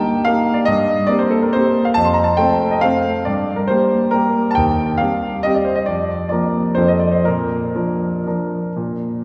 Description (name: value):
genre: classical, piano waltz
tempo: 115-148 BPM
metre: 3/4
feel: rubato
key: Bb major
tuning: A4 = 442 Hz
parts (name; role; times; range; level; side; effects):
- clear concert grand piano; solo; 0.0-9.2 s; Eb2 to C6; -17 LUFS; equal; none
room: wet church reverb, RT60 3.2 s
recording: none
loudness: -17 LUFS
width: mono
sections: 0.0-9.2 A section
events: none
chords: 0.0 Eb; 0.7 Cm7/G; 2.0 F; 3.3 Gm; 4.6 Cm/Eb; 5.9 Bb/F; 6.8 F; 7.3 Bb